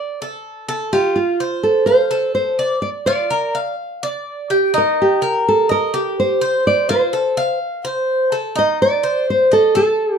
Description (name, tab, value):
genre	latin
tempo	126 BPM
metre	4/4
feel	straight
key	unclear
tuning	A4 = 438 Hz
part	nylon-string guitar	melody	0.0-10.2 s	F4 to Eb5	-16 LUFS	right 1 dB	none
part	Cuban tres	arpeggios	0.0-10.2 s	Eb4 to F5	-19 LUFS	equal	none
room	moderate studio reverb, RT60 0.5 s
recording	dark, warm production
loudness	-15 LUFS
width	side -7 dB against mid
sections	0.0-10.2 A section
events	none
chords	0.0 D5; 0.9 F; 2.8 Gm7; 4.8 Cm7; 6.7 F; 8.6 Cm69/Eb